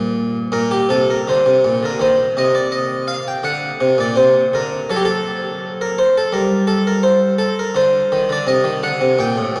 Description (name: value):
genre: classical, baroque-style suite movement for harpsichord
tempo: 83 BPM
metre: 4/4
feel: rubato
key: unclear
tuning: A4 = 438 Hz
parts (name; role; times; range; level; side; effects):
- harpsichord; solo; 0.0-9.6 s; A2 to G5; -17 LUFS; equal; none
room: wet cathedral reverb, RT60 5.7 s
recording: none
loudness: -17 LUFS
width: mono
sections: 0.5-9.6 A section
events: none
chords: 0.0 N.C.; 0.5 Bbadd9; 2.0 Cm; 3.4 D7; 6.3 N.C.; 7.7 Cmadd9